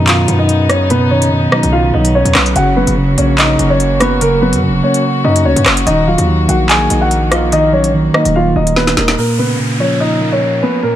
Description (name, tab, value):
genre	hip hop, drill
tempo	145 BPM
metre	4/4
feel	half-time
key	Bb phrygian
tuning	A4 = 441 Hz
part	dark concert grand piano	melody	0.0-11.0 s	Bb3 to Ab5	-15 LUFS	left 1 dB	low-pass filter, tape echo
part	clean electric guitar	accompaniment	0.0-11.0 s	Bb2 to Eb5	-16 LUFS	right 2 dB	low-pass filter
part	rich chamber string section	sustained chords	0.0-9.1 s	C#3 to Gb4	-20 LUFS	left 1 dB	none
part	distorted 808-style bass	bass	0.0-9.2 s	Eb1 to F#2	-16 LUFS	equal	distortion
part	drill drum kit	drums	0.1-9.2 s	handclaps, hi-hat, rim click, snare drum	-15 LUFS	equal	none
part	downlifter	sound effects	9.2-11.0 s	none	-22 LUFS	right 1 dB	none
room	light reverb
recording	none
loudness	-10 LUFS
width	side -12 dB against mid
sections	0.0-9.2 A section; 9.2-11.0 B section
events	drum fill 8.8-9.2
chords	0.0 Badd9; 2.6 Gb; 5.9 Ebm; 9.2 Bbm